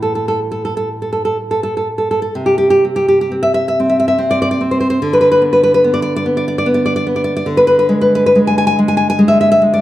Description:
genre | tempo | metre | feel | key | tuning
romantic piece for solo classical guitar | 57-76 BPM | 3/4 | rubato | unclear | A4 = 441 Hz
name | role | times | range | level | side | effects
nylon-string guitar | solo | 0.0-9.8 s | A2 to G#5 | -11 LUFS | equal | none
room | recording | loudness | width
moderate recital hall reverb, RT60 1.5 s | dark, warm production | -11 LUFS | side -14 dB against mid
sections
0.0-2.3 A section; 2.3-9.8 B section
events
none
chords
0.0 N.C.; 5.0 Bm/D; 7.5 E7/D

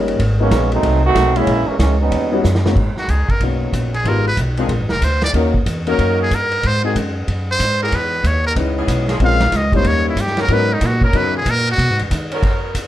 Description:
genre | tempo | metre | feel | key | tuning
jazz, big band swing | 187 BPM | 4/4 | swing 64% on 8ths | G# minor | A4 = 440 Hz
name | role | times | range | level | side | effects
warm grand piano | accompaniment | 0.0-11.3 s | G#2 to C#5 | -21 LUFS | left 4 dB | none
upright bass | bass | 0.0-12.4 s | E#1 to D#3 | -18 LUFS | equal | none
vintage drum kit | drums | 0.1-12.8 s | crash cymbal, hi-hat, kick drum, ride cymbal, snare drum | -22 LUFS | equal | none
clear trombone section | second line | 0.4-2.4 s | D#3 to F#4 | -17 LUFS | right 3 dB | none
trumpet with metal mute | melody | 3.0-12.0 s | D#4 to E#5 | -19 LUFS | equal | none
warm saxophone section | sustained chords | 4.0-12.7 s | E3 to A#4 | -26 LUFS | equal | none
room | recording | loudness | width
light reverb | dark, warm production | -14 LUFS | side -13 dB against mid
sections
0.0-2.8 A section; 2.8-12.9 B section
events
trombone section solo 0.0-2.8; drum fill 2.4-2.8; muted trumpet solo 2.8-12.9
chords
0.2 G#m9; 0.8 B13b9; 1.5 A#m7b5; 2.1 D#7alt; 2.8 G#m11; 4.1 Fm7b5; 4.7 A#7; 5.3 D#m7; 6.6 G#7; 7.9 C#m7; 9.2 A#m7; 9.8 D#7; 10.5 G#m11

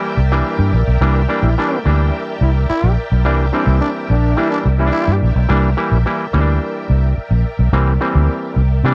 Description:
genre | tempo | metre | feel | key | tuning
funk | 107 BPM | 4/4 | straight | unclear | A4 = 439 Hz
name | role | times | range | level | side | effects
soft string machine | sustained chords | 0.0-8.9 s | Bb4 to G5 | -28 LUFS | equal | ensemble chorus
overdriven clav | stabs | 0.0-8.9 s | E3 to E4 | -22 LUFS | equal | none
vintage muted fingered electric bass | bass | 0.2-8.9 s | Bb1 to C3 | -16 LUFS | equal | none
growling trombone | second line | 1.4-5.1 s | D4 to E4 | -24 LUFS | equal | analog delay
room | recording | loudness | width
light reverb | cassette tape | -16 LUFS | mono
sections
0.0-8.9 A section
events
none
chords
0.0 C9

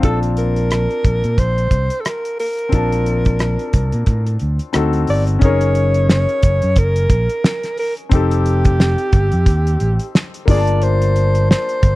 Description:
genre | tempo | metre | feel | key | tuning
lush 1970s-style soul | 89 BPM | 4/4 | swing 58% on 16ths | Bb major | A4 = 440 Hz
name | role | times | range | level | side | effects
breathy alto saxophone | melody | 0.0-12.0 s | G4 to D5 | -20 LUFS | equal | none
warm concert grand piano | accompaniment | 0.0-12.0 s | Bb3 to A5 | -23 LUFS | left 5 dB | none
fingered electric bass | bass | 0.0-12.0 s | F1 to Bb2 | -16 LUFS | equal | none
cloth-damped thuddy drum kit | drums | 0.0-12.0 s | hi-hat, kick drum, rim click, snare drum | -14 LUFS | equal | none
room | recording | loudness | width
small room ambience | dry, close 1970s-style studio recording | -14 LUFS | side -18 dB against mid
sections
0.0-5.4 A section; 5.4-12.0 B section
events
none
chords
0.0 Bbmaj9; 4.7 D7b9; 5.4 Gb6; 8.1 F9; 10.5 Gm9

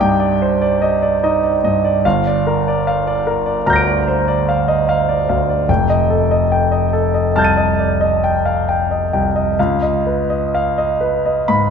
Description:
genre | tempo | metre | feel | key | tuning
classical, impressionist solo piano | 41-51 BPM (dotted quarters) | 9/8 | rubato | unclear | A4 = 440 Hz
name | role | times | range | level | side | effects
clear concert grand piano | solo | 0.0-11.7 s | F1 to Eb7 | -14 LUFS | equal | none
room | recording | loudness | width
moderate concert hall reverb, RT60 1.8 s | minimal, uncompressed stereo recording | -14 LUFS | side -6 dB against mid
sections
0.0-11.7 A section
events
none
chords
0.0 Cmadd9; 2.0 Gm7; 5.7 F9; 9.6 Db9

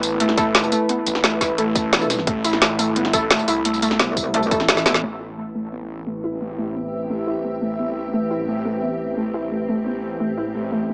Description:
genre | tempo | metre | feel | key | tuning
dark technical drum and bass | 174 BPM | 4/4 | straight | A minor | A4 = 440 Hz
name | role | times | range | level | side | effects
dark analog pad | sustained chords | 0.0-10.9 s | A3 to E5 | -29 LUFS | equal | chorus, phaser, sidechain pumping
snarling distorted saw bass | bass | 0.0-10.9 s | A1 to C2 | -33 LUFS | equal | distortion, overdrive, sidechain pumping
drum and bass drum kit | drums | 0.0-5.0 s | hi-hat, snare drum, tambourine | -22 LUFS | equal | low-pass filter on hats, low-pass filter on perc, low-pass filter on snare, low-pass filter on room
warbly dusty pluck | arpeggios | 0.2-10.9 s | A3 to E4 | -27 LUFS | equal | lush chorus, sidechain pumping, dub echo
filtered dub chord stab | stabs | 0.4-5.0 s | A3 to A4 | -28 LUFS | equal | lush chorus, dub echo
electronic kick drum | drums | 0.4-4.6 s | none | -28 LUFS | equal | none
metallic wobble bass | bass | 1.9-5.0 s | E1 to C2 | -26 LUFS | equal | chorus
granular cloud pad | texture | 6.1-10.9 s | C4 to E5 | -32 LUFS | equal | built-in reverb, sidechain pumping
room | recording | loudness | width
light reverb | small speaker sound | -21 LUFS | mono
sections
0.0-5.0 A section; 5.0-10.9 B section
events
drop 0.0-5.0; drum fill 4.8; filter sweep on synth arpeggio sound 5.0-10.9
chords
0.0 Amadd9

